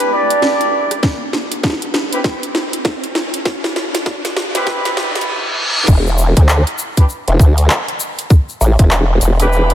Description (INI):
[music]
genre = glitch hop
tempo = 99 BPM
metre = 4/4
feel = swing 61% on 16ths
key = E minor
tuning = A4 = 441 Hz
[part]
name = mellow horn section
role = stabs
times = 0.0-9.7 s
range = C4 to D5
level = -18 LUFS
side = right 1 dB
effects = sidechain pumping, low-pass filter, analog delay
[part]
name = drum and bass drum kit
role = drums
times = 0.0-9.7 s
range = crash cymbal, handclaps, hi-hat, rim click, snare drum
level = -19 LUFS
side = equal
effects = overdrive, studio ambience
[part]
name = riser and reverse cymbal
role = sound effects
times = 0.2-5.9 s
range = none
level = -24 LUFS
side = right 1 dB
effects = none
[part]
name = electronic kick drum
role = drums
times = 1.0-8.9 s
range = none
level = -10 LUFS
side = equal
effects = overdrive, studio ambience
[part]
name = formant-sweep wobble bass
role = bass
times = 5.9-9.7 s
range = E1 to D2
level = -12 LUFS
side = equal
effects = chorus, overdrive
[part]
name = egg shaker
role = percussion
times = 5.9-9.7 s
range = none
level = -26 LUFS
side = left 4 dB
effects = none
[sound]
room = moderate lush hall reverb, RT60 2.5 s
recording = dreamy mix soaked in reverb, high-pass filter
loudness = -13 LUFS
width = side -12 dB against mid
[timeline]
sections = 0.0-5.9 A section; 5.9-9.7 B section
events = build-up 0.0-5.9; drum fill 0.0-5.3; filter sweep on horn section 0.0-5.9; filter sweep 0.0-5.9; riser 0.2-5.9; reverse cymbal 4.7-5.9; drop 5.9-9.7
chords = 0.0 Em7; 1.0 Cmaj7; 5.9 E7(no3)